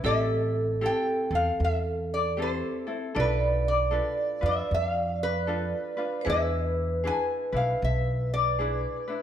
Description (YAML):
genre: Hawaiian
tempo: 77 BPM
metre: 4/4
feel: swing 63% on 8ths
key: A minor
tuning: A4 = 440 Hz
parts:
  - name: lap resonator guitar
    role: melody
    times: 0.0-9.2 s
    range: B4 to G#5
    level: -30 LUFS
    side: left 2 dB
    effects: none
  - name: vibraphone with hard mallets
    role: second line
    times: 0.0-9.2 s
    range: A4 to D5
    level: -30 LUFS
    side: right 2 dB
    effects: none
  - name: ukulele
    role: accompaniment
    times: 0.0-9.2 s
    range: C4 to B4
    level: -34 LUFS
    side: left 2 dB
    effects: none
  - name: upright bass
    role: bass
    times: 0.0-8.8 s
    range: A1 to F2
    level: -29 LUFS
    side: equal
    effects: none
room: wet recital hall reverb, RT60 1.5 s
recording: none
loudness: -25 LUFS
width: side -10 dB against mid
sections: 0.0-9.2 A section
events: none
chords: 0.0 Am7; 3.1 Bm7b5; 6.3 E7